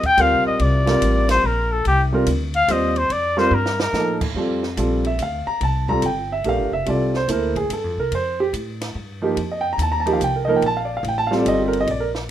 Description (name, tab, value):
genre	modal jazz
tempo	144 BPM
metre	3/4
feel	swing 66% on 8ths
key	unclear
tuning	A4 = 440 Hz
part	warm trumpet	melody	0.0-4.2 s	G4 to G5	-18 LUFS	left 2 dB	none
part	upright bass	bass	0.0-12.3 s	F1 to A2	-24 LUFS	equal	none
part	compact cocktail drum kit	drums	0.0-12.2 s	crash cymbal, hi-hat, kick drum, ride cymbal, snare drum	-32 LUFS	right 1 dB	none
part	warm grand piano	accompaniment	0.2-12.1 s	F3 to Bb5	-20 LUFS	right 2 dB	none
room	light reverb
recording	minimal, uncompressed stereo recording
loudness	-18 LUFS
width	side -11 dB against mid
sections	0.0-4.4 A section; 4.4-12.3 A section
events	trumpet solo 0.0-4.4; drum fill 3.5-3.9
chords	0.0 F9sus4; 4.4 C9sus4; 9.4 F9sus4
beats	0.18 | 0.60 1.02 1.44 | 1.85 2.27 2.69 | 3.10 3.52 3.94 | 4.36 4.78 5.19 | 5.61 6.03 6.45 | 6.87 7.28 7.70 | 8.12 8.54 8.95 | 9.37 9.79 10.21 | 10.62 11.04 11.46 | 11.88